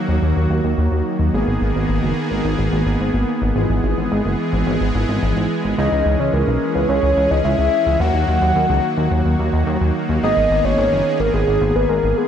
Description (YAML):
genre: synthwave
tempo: 108 BPM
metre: 4/4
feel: straight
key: unclear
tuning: A4 = 441 Hz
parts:
  - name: soft supersaw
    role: sustained chords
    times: 0.0-12.3 s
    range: D#3 to G#4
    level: -20 LUFS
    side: equal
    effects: none
  - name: chorused synth bass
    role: bass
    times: 0.1-12.1 s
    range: F#1 to D#2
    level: -19 LUFS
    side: equal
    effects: tube saturation
  - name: soft octave-layered synth lead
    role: melody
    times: 5.8-12.3 s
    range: G#4 to F#5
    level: -18 LUFS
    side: left 1 dB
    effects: chorus, phaser, tape echo
room: moderate scoring stage reverb, RT60 1.8 s, digital ambience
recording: dark, warm production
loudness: -16 LUFS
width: side -9 dB against mid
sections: 0.0-12.3 A section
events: none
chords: 0.0 D#m; 1.3 G#madd9; 3.6 E; 5.8 C#m; 8.0 D#m; 10.2 G#madd9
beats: 0.23 0.78 | 1.34 1.89 2.45 3.00 | 3.56 4.12 4.67 5.23 | 5.78 6.34 6.89 7.45 | 8.00 8.56 9.12 9.67 | 10.23 10.78 11.34 11.89